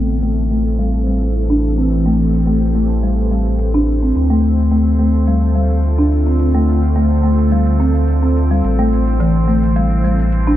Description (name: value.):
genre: organic downtempo.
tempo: 107 BPM.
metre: 4/4.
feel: swing 54% on 16ths.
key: A minor.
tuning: A4 = 440 Hz.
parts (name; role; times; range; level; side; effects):
bowed-like drone; sustained chords; 0.0-10.6 s; D3 to A4; -21 LUFS; equal; built-in reverb, phaser.
warm sub bass; bass; 0.0-10.6 s; A1 to D2; -15 LUFS; equal; none.
drifting glass-harmonics texture; texture; 1.7-10.6 s; C4 to C5; -29 LUFS; right 3 dB; chorus, built-in reverb.
electronic hi-hat and shaker; drums; 0.1-10.6 s; none; -51 LUFS; right 1 dB; none.
folk marimba with medium mallets; arpeggios; 0.2-10.6 s; E3 to D4; -17 LUFS; equal; low-pass filter, tape echo.
room: light reverb, digital ambience.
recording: low-pass filter.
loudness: -13 LUFS.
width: side -13 dB against mid.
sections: 0.0-10.6 A section.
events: filter sweep on marimba 0.0-10.6; filter sweep 0.0-10.6.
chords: 0.0 Am7; 4.2 Dm7; 8.6 Am7.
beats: 0.23 0.79 1.35 | 1.91 2.47 3.03 3.59 | 4.15 4.71 5.28 5.84 | 6.40 6.96 7.52 8.08 | 8.64 9.20 9.76 10.32.